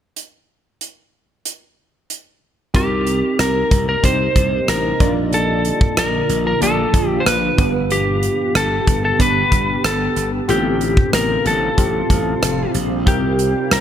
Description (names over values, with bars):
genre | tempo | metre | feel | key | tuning
1980s-style pop | 93 BPM | 4/4 | straight | C dorian | A4 = 440 Hz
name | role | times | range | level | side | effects
modern studio drum kit | drums | 0.2-13.8 s | hi-hat, kick drum, rim click | -19 LUFS | equal | none
glassy digital keys | accompaniment | 2.7-13.8 s | G2 to D5 | -23 LUFS | equal | chorus
shimmering ambient pad | sustained chords | 3.4-13.8 s | Bb2 to G4 | -25 LUFS | right 1 dB | chorus, built-in reverb
glassy slap bass | bass | 2.7-13.8 s | F1 to C2 | -22 LUFS | equal | none
lightly driven lead guitar | melody | 2.8-13.8 s | G4 to C5 | -19 LUFS | left 1 dB | ping-pong delay
room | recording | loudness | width
light reverb, small room reverb | none | -15 LUFS | side -10 dB against mid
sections
0.2-2.7 A section; 2.7-13.8 B section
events
none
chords
0.2 N.C.; 2.7 Cm7; 5.0 Bb; 7.6 G; 10.5 Fadd9/A; 13.1 Cm7